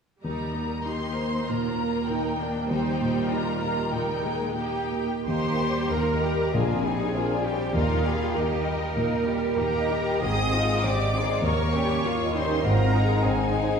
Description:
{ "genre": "classical", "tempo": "98 BPM", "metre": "4/4", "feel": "rubato", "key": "Eb major", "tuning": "A4 = 442 Hz", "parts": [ { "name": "warm grand piano", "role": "melody", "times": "0.2-13.8 s", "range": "Bb1 to Eb5", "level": "-26 LUFS", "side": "equal", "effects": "none" }, { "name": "warm symphonic violin section", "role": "second line", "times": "0.2-13.8 s", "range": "G3 to C6", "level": "-31 LUFS", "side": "left 3 dB", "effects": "none" }, { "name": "rich symphonic viola section", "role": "accompaniment", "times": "0.2-13.8 s", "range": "G3 to Eb5", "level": "-32 LUFS", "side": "right 2 dB", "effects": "none" }, { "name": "rich symphonic cello section", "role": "bass", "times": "0.2-13.8 s", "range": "Eb2 to Bb4", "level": "-32 LUFS", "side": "right 2 dB", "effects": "none" }, { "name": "warm symphonic violin section", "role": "melody", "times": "4.6-13.8 s", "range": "Eb5 to Eb6", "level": "-33 LUFS", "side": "left 4 dB", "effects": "none" }, { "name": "rich symphonic double bass section", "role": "bass", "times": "5.3-13.8 s", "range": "Ab1 to Eb2", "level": "-31 LUFS", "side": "right 2 dB", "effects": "none" } ], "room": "wet concert hall reverb, RT60 2.0 s", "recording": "heard from further back in the room", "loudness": "-23 LUFS", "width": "side -6 dB against mid", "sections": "0.2-5.3 A section; 5.3-13.8 B section", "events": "none", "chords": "0.2 Eb; 6.5 Bb13; 7.8 Eb; 10.2 Ab; 11.5 Eb7; 12.7 Ab", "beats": "| 0.23 0.86 1.48 2.09 | 2.69 3.30 3.92 4.57 | 5.28 5.92 6.55 7.15 | 7.75 8.36 8.96 9.57 | 10.22 10.85 11.45 12.05 | 12.65 13.26" }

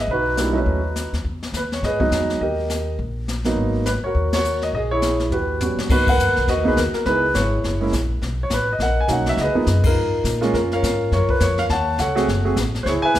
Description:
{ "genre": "jazz piano trio", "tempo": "207 BPM", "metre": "4/4", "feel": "swing 60% on 8ths", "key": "G# minor", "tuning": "A4 = 440 Hz", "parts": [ { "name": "warm grand piano", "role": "melody", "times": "0.0-13.2 s", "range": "E#3 to A5", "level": "-20 LUFS", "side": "right 1 dB", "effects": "none" }, { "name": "upright bass", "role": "bass", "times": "0.0-13.2 s", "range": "F#1 to A#2", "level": "-23 LUFS", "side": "equal", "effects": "none" }, { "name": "jazz brush drum kit", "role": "drums", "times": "0.1-13.2 s", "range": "brushed snare drum, crash cymbal, hi-hat, kick drum, ride cymbal, snare drum, toms", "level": "-26 LUFS", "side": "left 2 dB", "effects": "none" } ], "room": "moderate recital hall reverb, RT60 1.4 s", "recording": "recorded in a church or concert hall", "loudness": "-18 LUFS", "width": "side -13 dB against mid", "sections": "0.0-5.9 A section; 5.9-13.2 B section", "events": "band accent 4.3, 6.0, 9.8; drum fill 5.3-5.9", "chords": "0.1 B7; 1.2 Emaj7; 2.4 D#; 3.6 G#m9; 4.7 A#m7b5; 5.3 D#7alt; 5.9 G#m9; 7.1 C#m7; 7.6 F#9; 8.2 Bmaj7; 9.4 C#13; 10.5 F#maj7; 11.7 D#m7b5; 12.3 F#m", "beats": "| 0.08 0.37 0.66 0.95 | 1.24 1.53 1.82 2.12 | 2.41 2.70 2.99 3.28 | 3.57 3.86 4.15 4.44 | 4.73 5.02 5.31 5.60 | 5.89 6.18 6.47 6.76 | 7.05 7.35 7.64 7.93 | 8.22 8.51 8.80 9.09 | 9.38 9.67 9.96 10.25 | 10.54 10.83 11.12 11.41 | 11.70 11.99 12.28 12.57 | 12.86 13.14" }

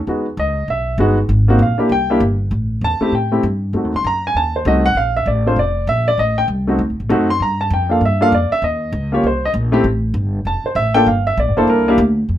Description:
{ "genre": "jazz piano trio", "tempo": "196 BPM", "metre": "4/4", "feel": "swing 63% on 8ths", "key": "F major", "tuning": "A4 = 440 Hz", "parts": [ { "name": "upright bass", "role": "bass", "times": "0.0-12.4 s", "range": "F1 to A2", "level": "-18 LUFS", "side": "equal", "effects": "none" }, { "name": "warm upright piano", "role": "melody", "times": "0.1-12.0 s", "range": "G#3 to C6", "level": "-16 LUFS", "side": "equal", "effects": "none" } ], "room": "moderate studio reverb, RT60 0.6 s", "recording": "none", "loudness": "-14 LUFS", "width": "side -12 dB against mid", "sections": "0.0-2.5 A section; 2.5-12.3 A section", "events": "upright piano solo 0.0-12.3", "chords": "0.1 Emaj9; 1.3 Absus2; 1.9 C5; 2.5 A7(no3); 3.7 F7b9 (rootless); 5.0 Bbmaj7; 6.2 Adim; 6.8 D7b9; 7.4 Gm7; 8.6 Eb7(no3); 9.8 F; 11.1 Gm7; 11.7 C13", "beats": "| 0.07 0.38 0.68 0.99 | 1.29 1.60 1.90 2.21 | 2.52 2.82 3.13 3.43 | 3.74 4.04 4.35 4.66 | 4.96 5.27 5.57 5.88 | 6.19 6.49 6.80 7.10 | 7.41 7.71 8.02 8.32 | 8.63 8.93 9.24 9.54 | 9.85 10.15 10.46 10.76 | 11.07 11.37 11.68 11.98 | 12.29" }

